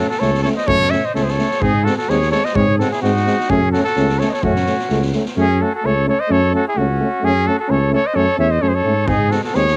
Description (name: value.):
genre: balkan folk, Balkan brass band.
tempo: 128 BPM.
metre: 2/4.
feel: swing 55% on 16ths.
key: F# dorian sharp4.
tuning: A4 = 436 Hz.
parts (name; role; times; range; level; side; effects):
mellow trumpet; melody; 0.0-9.8 s; F#4 to E5; -21 LUFS; equal; cassette tape, tape echo.
warm trumpet; second line; 0.0-9.8 s; C#4 to C#5; -29 LUFS; equal; cassette tape.
mellow French horn; accompaniment; 0.0-9.8 s; B#3 to C#4; -26 LUFS; equal; cassette tape.
mellow trombone; accompaniment; 0.0-9.6 s; G#3 to A3; -25 LUFS; equal; cassette tape.
street-band drum kit; percussion; 0.1-5.3, 9.1-9.7 s; kick drum, snare drum; -28 LUFS; equal; none.
dark tuba; bass; 0.2-9.8 s; C#2 to G#2; -21 LUFS; equal; none.
room: light reverb.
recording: home recording on cassette.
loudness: -17 LUFS.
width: mono.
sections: 0.0-5.4 A section; 5.4-9.8 A section.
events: none.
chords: 0.0 F#m; 1.6 G#; 3.5 F#m; 9.1 G#.